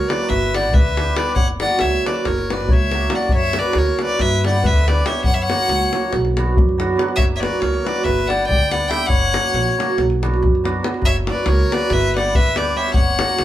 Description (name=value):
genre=balkan folk, Balkan wedding band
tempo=280 BPM (eighths)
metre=9/8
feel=straight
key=F# phrygian dominant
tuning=A4 = 440 Hz
part: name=clear violin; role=melody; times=0.0-13.4 s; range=C#5 to G5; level=-22 LUFS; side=equal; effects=none
part: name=accordion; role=second line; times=0.0-13.4 s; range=A#4 to E5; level=-23 LUFS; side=left 4 dB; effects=none
part: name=cimbalom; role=accompaniment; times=0.0-13.4 s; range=F#3 to G4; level=-22 LUFS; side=right 4 dB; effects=none
part: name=davul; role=percussion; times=0.1-13.4 s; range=none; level=-21 LUFS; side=left 1 dB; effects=none
part: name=upright bass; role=bass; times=0.3-13.4 s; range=F#1 to G2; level=-22 LUFS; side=equal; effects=none
room=moderate large studio reverb, RT60 0.9 s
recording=band playing live in one room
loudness=-15 LUFS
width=side -13 dB against mid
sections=0.0-3.3 A section; 3.3-13.4 A section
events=none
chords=0.3 G; 1.4 F#; 4.2 G; 5.2 F#; 6.1 Bm; 7.2 F#; 8.0 G; 9.1 F#; 10.0 Bm; 11.0 F#; 11.9 G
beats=0.05 0.27 0.48 0.70 0.92 1.14 | 1.35 1.57 1.79 2.00 2.22 2.44 2.65 2.87 3.08 | 3.30 3.52 3.73 3.95 4.16 4.38 4.59 4.81 5.02 | 5.24 5.45 5.67 5.88 6.09 6.31 6.52 6.74 6.95 | 7.17 7.38 7.59 7.81 8.02 8.24 8.45 8.67 8.88 | 9.10 9.31 9.52 9.74 9.95 10.17 10.38 10.60 10.81 | 11.02 11.24 11.45 11.66 11.88 12.09 12.31 12.52 12.73 | 12.95 13.16 13.38